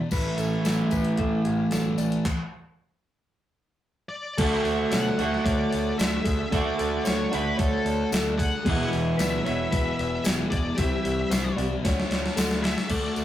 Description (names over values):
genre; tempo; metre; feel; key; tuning
rock, shoegaze and dream pop; 113 BPM; 4/4; straight; D lydian; A4 = 440 Hz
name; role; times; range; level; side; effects
mellow electric guitar; arpeggios; 0.0-13.2 s; G4 to D5; -33 LUFS; left 3 dB; none
overdriven semi-hollow guitar; riff; 0.0-13.2 s; E2 to F#4; -27 LUFS; right 2 dB; none
thick fuzz guitar; riff; 0.0-13.2 s; E2 to D4; -31 LUFS; left 3 dB; distortion
growling picked electric bass; bass; 0.1-13.2 s; E1 to B2; -33 LUFS; equal; overdrive
clean 12-bit digital drum machine; drums; 0.1-13.2 s; crash cymbal, handclaps, hi-hat, kick drum, snare drum; -28 LUFS; equal; none
tambourine; percussion; 0.1-13.2 s; none; -40 LUFS; left 6 dB; none
octave-fuzz lead guitar; melody; 4.1-13.2 s; A4 to F#5; -33 LUFS; left 1 dB; distortion
room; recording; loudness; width
wet small room reverb, RT60 0.6 s; rough rehearsal-room recording, warm saturation; -22 LUFS; side -12 dB against mid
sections
0.0-4.4 A section; 4.4-12.9 B section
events
stop 2.3-4.4; drum fill 11.8-12.9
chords
0.1 A; 2.3 N.C.; 4.4 Dmaj7; 8.7 E; 10.8 C; 11.8 Dmaj7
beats
| 0.11 0.65 1.18 1.72 | 2.25 2.79 3.32 3.86 | 4.39 4.93 5.46 5.99 | 6.53 7.06 7.59 8.12 | 8.65 9.19 9.72 10.25 | 10.78 11.31 11.84 12.37 | 12.90